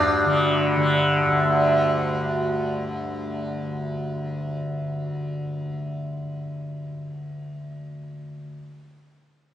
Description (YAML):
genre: indian classical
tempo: 151 BPM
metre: 5/4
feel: straight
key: unclear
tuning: A4 = 440 Hz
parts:
  - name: sitar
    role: melody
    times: 0.0-3.2 s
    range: D4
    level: -25 LUFS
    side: left 1 dB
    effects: slapback echo
  - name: tanpura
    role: drone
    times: 0.0-8.4 s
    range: D2 to D3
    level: -23 LUFS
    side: equal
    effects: none
room: light reverb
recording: recorded on a phone in the room, club reverb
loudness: -22 LUFS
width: side -11 dB against mid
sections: 0.0-1.8 A section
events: none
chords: none